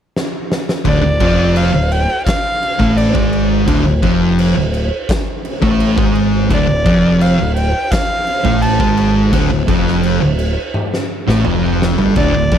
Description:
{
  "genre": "stoner and doom metal",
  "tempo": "85 BPM",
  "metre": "4/4",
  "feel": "straight",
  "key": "unclear",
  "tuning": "A4 = 440 Hz",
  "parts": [
    { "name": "oversized low-tuned drum kit", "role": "drums", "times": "0.2-12.6 s", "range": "crash cymbal, kick drum, snare drum, toms", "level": "-19 LUFS", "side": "equal", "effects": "none" },
    { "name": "thick fuzz guitar", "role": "riff", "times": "0.8-12.6 s", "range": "D2 to A3", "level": "-17 LUFS", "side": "left 10 dB", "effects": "distortion" },
    { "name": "thick fuzz guitar", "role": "riff", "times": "0.8-12.6 s", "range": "D2 to A3", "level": "-16 LUFS", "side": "right 8 dB", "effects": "distortion" },
    { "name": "rich erhu", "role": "melody", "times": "0.9-12.6 s", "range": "D5 to A5", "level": "-19 LUFS", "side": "equal", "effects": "tape echo" },
    { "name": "growling picked electric bass", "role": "bass", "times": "0.9-12.6 s", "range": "D1 to A1", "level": "-18 LUFS", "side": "equal", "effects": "overdrive" }
  ],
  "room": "little or no reverb",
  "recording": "none",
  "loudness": "-12 LUFS",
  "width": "side -9 dB against mid",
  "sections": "0.8-12.6 A section",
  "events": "drum fill 0.1-0.8, 10.8-12.2",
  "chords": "0.0 N.C.; 0.8 Dm"
}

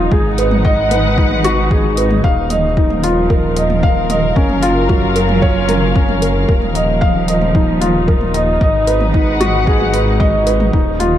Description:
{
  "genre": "piano and strings electronica",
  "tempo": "113 BPM",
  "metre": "4/4",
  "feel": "straight",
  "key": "unclear",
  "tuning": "A4 = 442 Hz",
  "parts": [
    { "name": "muted studio string section", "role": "sustained chords", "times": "0.0-11.2 s", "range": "F3 to Gb5", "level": "-19 LUFS", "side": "right 1 dB", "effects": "none" },
    { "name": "felt-muted upright piano", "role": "riff", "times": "0.0-11.2 s", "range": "Db4 to F5", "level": "-16 LUFS", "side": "left 1 dB", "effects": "digital delay" },
    { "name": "dark detuned saw bass", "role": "bass", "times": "0.0-11.2 s", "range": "Eb1 to Ab1", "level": "-18 LUFS", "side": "equal", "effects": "sidechain pumping" },
    { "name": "deep house drum kit", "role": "drums", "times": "0.1-11.1 s", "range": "hi-hat, toms", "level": "-24 LUFS", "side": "right 1 dB", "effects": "none" },
    { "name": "electronic kick drum", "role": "drums", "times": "0.1-10.8 s", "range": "none", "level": "-15 LUFS", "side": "equal", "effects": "none" }
  ],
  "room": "light reverb",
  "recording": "dark, warm production",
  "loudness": "-11 LUFS",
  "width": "side -11 dB against mid",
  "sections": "0.0-11.2 A section",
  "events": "none",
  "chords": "0.1 Abm7; 2.2 Ebsus2; 4.4 Gbmaj7; 6.5 Ebsus2; 8.6 Abm7"
}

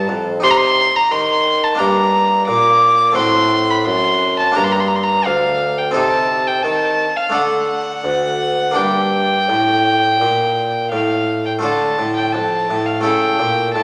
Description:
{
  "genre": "classical, baroque-style sonata movement with continuo",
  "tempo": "86 BPM",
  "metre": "4/4",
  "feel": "straight",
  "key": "G minor",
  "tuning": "A4 = 439 Hz",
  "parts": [
    { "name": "warm violin", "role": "melody", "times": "0.0-13.8 s", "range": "F5 to D6", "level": "-18 LUFS", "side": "equal", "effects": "none" },
    { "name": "harpsichord", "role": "accompaniment", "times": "0.0-13.8 s", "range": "D2 to A4", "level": "-22 LUFS", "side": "equal", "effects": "none" },
    { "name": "mellow bassoon", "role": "bass", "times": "0.0-13.8 s", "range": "D2 to Eb3", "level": "-24 LUFS", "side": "equal", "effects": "none" }
  ],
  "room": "wet recital hall reverb, RT60 1.6 s",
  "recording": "none",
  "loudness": "-16 LUFS",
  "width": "mono",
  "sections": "0.0-11.6 A section; 11.6-13.8 A section",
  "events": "none",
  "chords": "0.4 Cm; 1.8 Gm; 3.2 F#dim/A; 4.6 Gm; 5.9 Adim/C; 7.3 D; 8.7 Gm; 11.6 Dm; 13.0 A7"
}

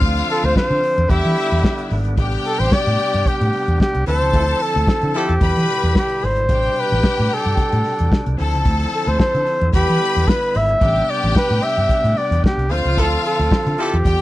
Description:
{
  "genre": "disco",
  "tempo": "111 BPM",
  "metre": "4/4",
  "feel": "straight",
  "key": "A minor",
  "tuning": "A4 = 437 Hz",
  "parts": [
    { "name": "clear symphonic string section", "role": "second line", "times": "0.0-14.2 s", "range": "E4 to B5", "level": "-24 LUFS", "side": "left 3 dB", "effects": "none" },
    { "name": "bright tonewheel organ", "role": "sustained chords", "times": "0.0-14.2 s", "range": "B2 to F4", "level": "-27 LUFS", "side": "equal", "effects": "overdrive, fast rotary speaker" },
    { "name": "vintage muted fingered electric bass", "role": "bass", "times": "0.0-14.2 s", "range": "G#1 to E3", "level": "-19 LUFS", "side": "equal", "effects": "none" },
    { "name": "warm soul drum kit", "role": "drums", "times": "0.0-14.2 s", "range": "hi-hat, kick drum, snare drum", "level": "-17 LUFS", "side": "equal", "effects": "none" },
    { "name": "warm flugelhorn", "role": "melody", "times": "0.3-14.2 s", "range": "G4 to E5", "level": "-20 LUFS", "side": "equal", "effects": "none" },
    { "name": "warm horn section", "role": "stabs", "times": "4.3-5.3, 13.0-14.0 s", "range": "F3 to A4", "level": "-23 LUFS", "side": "left 1 dB", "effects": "none" }
  ],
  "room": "small room ambience",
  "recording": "dry, close 1970s-style studio recording",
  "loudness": "-15 LUFS",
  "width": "side -16 dB against mid",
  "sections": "0.0-14.2 A section",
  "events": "band accent 4.3-6.5, 13.0-14.2",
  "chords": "0.0 Dm7; 1.1 Em7; 2.2 Am11; 4.1 Dm9; 5.4 Em7; 6.5 Am11; 8.4 Dm9; 9.7 Em7; 10.8 Am11; 12.7 Dm9"
}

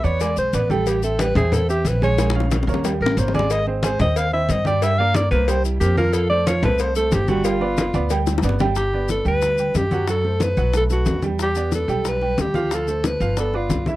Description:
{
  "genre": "Afro-Cuban jazz",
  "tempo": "182 BPM",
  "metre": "4/4",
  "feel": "straight",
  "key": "G major from 8.8 s",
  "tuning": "A4 = 439 Hz",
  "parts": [
    { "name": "breathy alto saxophone", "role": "melody", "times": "0.0-13.9 s", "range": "E4 to F5", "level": "-22 LUFS", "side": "equal", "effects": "none" },
    { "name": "warm upright piano", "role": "accompaniment", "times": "0.0-14.0 s", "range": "E3 to G#5", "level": "-25 LUFS", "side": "right 5 dB", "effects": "none" },
    { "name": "upright bass", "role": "bass", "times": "0.0-14.0 s", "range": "G1 to G2", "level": "-22 LUFS", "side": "equal", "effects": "none" },
    { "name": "congas", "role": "percussion", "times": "0.0-14.0 s", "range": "none", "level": "-26 LUFS", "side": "left 2 dB", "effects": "none" },
    { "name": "maracas", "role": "percussion", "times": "0.0-14.0 s", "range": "none", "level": "-36 LUFS", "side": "left 15 dB", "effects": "none" },
    { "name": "cowbell and bongos", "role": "percussion", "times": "0.2-14.0 s", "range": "none", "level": "-28 LUFS", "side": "left 6 dB", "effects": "none" }
  ],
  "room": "light reverb",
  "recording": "dry, close 1970s-style studio recording",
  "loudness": "-17 LUFS",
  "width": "side -16 dB against mid",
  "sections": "0.0-8.8 A section; 8.8-14.0 B section",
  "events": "alto saxophone solo 0.0-8.8; drum fill 2.2-3.5, 8.3-8.8",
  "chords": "0.2 E7; 0.9 Am7; 2.2 Bbm7; 2.8 Eb7; 3.5 Ab; 4.8 Gm; 5.5 C5; 6.1 F; 7.5 G7; 8.8 Gmaj7; 10.1 F#dim; 10.7 B5; 11.4 Em7; 12.7 Dm7; 13.4 G7"
}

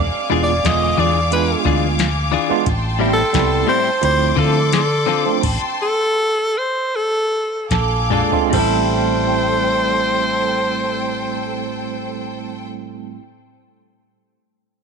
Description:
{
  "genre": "straight-eighth soul blues",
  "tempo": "71-89 BPM",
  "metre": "4/4",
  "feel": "straight",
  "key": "A minor",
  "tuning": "A4 = 439 Hz",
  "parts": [
    { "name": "clean electric guitar", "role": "second line", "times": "0.0-0.3, 7.7-13.2 s", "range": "A4 to D5", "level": "-24 LUFS", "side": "right 13 dB", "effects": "analog chorus" },
    { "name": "clear symphonic string section", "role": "sustained chords", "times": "0.0-12.7 s", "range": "A4 to D6", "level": "-24 LUFS", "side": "left 2 dB", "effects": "none" },
    { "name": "hollow-body short-scale fingered electric bass", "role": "bass", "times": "0.0-13.2 s", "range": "E1 to D3", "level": "-22 LUFS", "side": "equal", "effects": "none" },
    { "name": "barky tine electric piano", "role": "accompaniment", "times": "0.3-13.2 s", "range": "D3 to F4", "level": "-22 LUFS", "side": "right 14 dB", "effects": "medium tremolo" },
    { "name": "direct-recorded clean electric guitar", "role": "stabs", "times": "0.3-13.3 s", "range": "A2 to A4", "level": "-24 LUFS", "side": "left 12 dB", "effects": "warbly pitch drift" },
    { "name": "breathy tenor saxophone", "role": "melody", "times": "0.4-12.7 s", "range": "A4 to D#5", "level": "-19 LUFS", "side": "equal", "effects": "none" },
    { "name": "soft vintage rhythm box", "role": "drums", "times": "0.6-8.7 s", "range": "crash cymbal, hi-hat, kick drum, snare drum, toms", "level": "-23 LUFS", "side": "left 3 dB", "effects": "none" }
  ],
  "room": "light reverb",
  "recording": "1960s-style stereo with parts hard left and right",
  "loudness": "-15 LUFS",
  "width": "side -5 dB against mid",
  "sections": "0.0-8.5 A section; 8.5-11.9 B section",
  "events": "slowing down 2.7-8.5; stop 5.4-7.7; drum fill 7.7-8.5",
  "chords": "0.0 E7b9; 2.7 Am7; 4.0 Dm7; 5.4 Am7; 7.7 Bb7; 8.5 Am7"
}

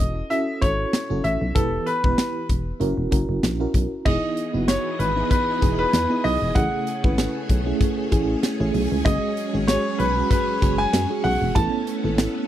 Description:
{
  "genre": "1980s-style pop",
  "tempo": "96 BPM",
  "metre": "4/4",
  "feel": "swing 55% on 16ths",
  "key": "unclear",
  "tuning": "A4 = 440 Hz",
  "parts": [
    { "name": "clear baby grand piano", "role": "melody", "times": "0.0-12.5 s", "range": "A4 to A5", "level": "-25 LUFS", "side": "left 1 dB", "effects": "tape echo" },
    { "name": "FM electric piano with tremolo", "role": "accompaniment", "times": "0.0-12.5 s", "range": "C#3 to B4", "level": "-26 LUFS", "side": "right 3 dB", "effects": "phaser" },
    { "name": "solid FM bass", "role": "bass", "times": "0.0-12.3 s", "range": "E1 to F#2", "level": "-25 LUFS", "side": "equal", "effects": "none" },
    { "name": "modern studio drum kit", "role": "drums", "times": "0.0-12.3 s", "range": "crash cymbal, hi-hat, kick drum, snare drum", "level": "-22 LUFS", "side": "equal", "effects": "none" },
    { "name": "string machine, violins", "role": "sustained chords", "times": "4.1-12.5 s", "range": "E3 to D#5", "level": "-30 LUFS", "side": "left 1 dB", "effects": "ensemble chorus" }
  ],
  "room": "small room reverb",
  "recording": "dry, close 1970s-style studio recording",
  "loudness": "-19 LUFS",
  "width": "side -12 dB against mid",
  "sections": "0.0-4.1 A section; 4.1-12.5 B section",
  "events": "none",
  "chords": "0.0 B7sus4 (rootless); 1.6 Em; 2.8 F#7; 4.1 Emaj7; 6.6 Amaj7; 9.1 F#sus2; 11.6 Aadd9"
}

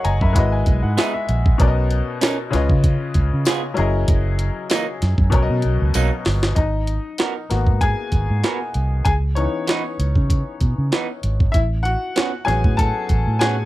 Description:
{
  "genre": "lush 1970s-style soul",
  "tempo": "97 BPM",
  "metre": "4/4",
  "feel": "swing 54% on 16ths",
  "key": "unclear",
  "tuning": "A4 = 440 Hz",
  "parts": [
    { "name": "clear grand piano", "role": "accompaniment", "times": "0.0-13.7 s", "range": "B2 to B5", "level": "-24 LUFS", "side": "left 4 dB", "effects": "none" },
    { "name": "jungle sampler-style drum kit", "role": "drums", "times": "0.0-13.6 s", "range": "hi-hat, kick drum, snare drum", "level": "-19 LUFS", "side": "equal", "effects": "none" },
    { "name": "vintage muted fingered electric bass", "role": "bass", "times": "0.1-13.7 s", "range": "F#1 to C#3", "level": "-19 LUFS", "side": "equal", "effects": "none" },
    { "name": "electric guitar through a small old amp", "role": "riff", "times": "1.0-13.6 s", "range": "E3 to A#4", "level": "-24 LUFS", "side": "right 6 dB", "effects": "none" },
    { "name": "tambourine", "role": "percussion", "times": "1.0-6.1 s", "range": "none", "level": "-34 LUFS", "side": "left 16 dB", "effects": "none" }
  ],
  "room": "little or no reverb",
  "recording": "dry, close 1970s-style studio recording",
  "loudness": "-17 LUFS",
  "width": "side -16 dB against mid",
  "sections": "0.0-6.6 A section; 6.6-13.7 B section",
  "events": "grand piano fill 0.0-1.6; drum fill 5.3-6.6; grand piano solo 6.6-13.7",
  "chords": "0.4 Emaj7/G#; 1.6 Bmaj9; 2.5 C#7; 3.8 F#13; 5.3 Bmaj7; 6.6 G#m9; 9.1 C#m9; 11.5 A69"
}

